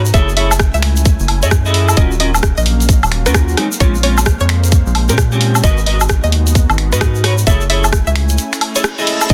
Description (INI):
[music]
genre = UK garage, two-step garage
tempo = 131 BPM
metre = 4/4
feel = swing 63% on 16ths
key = unclear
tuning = A4 = 440 Hz
[part]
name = warm analog pad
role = sustained chords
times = 0.0-9.3 s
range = Gb3 to Bb5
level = -29 LUFS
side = equal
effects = chorus, sidechain pumping
[part]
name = rubbery square bass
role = bass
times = 0.0-9.3 s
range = Eb1 to Bb2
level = -17 LUFS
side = equal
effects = none
[part]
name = string-like resonator pluck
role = melody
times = 0.1-9.3 s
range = Bb4 to Fb5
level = -24 LUFS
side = equal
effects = chorus, delay
[part]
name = clean electric guitar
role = stabs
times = 0.1-9.3 s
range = Ab3 to Eb5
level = -22 LUFS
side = equal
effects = analog chorus
[part]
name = electronic kick drum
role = drums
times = 0.1-9.3 s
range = none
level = -15 LUFS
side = equal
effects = none
[part]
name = garage drum kit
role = drums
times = 0.1-9.3 s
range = finger snaps, hi-hat, rim click, woodblock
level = -20 LUFS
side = equal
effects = soft clipping on snare
[part]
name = tube shaker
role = percussion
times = 0.1-9.3 s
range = none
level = -26 LUFS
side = equal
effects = none
[part]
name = reverse cymbal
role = sound effects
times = 8.6-9.3 s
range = none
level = -26 LUFS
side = equal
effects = none
[sound]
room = little or no reverb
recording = dense, heavily limited modern master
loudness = -13 LUFS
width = mono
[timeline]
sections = 0.0-9.3 A section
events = reverse cymbal 8.6-9.3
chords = 0.1 Gbm9; 2.0 Ebm9; 3.6 Bbm9; 5.6 Abm9; 7.5 Gbm9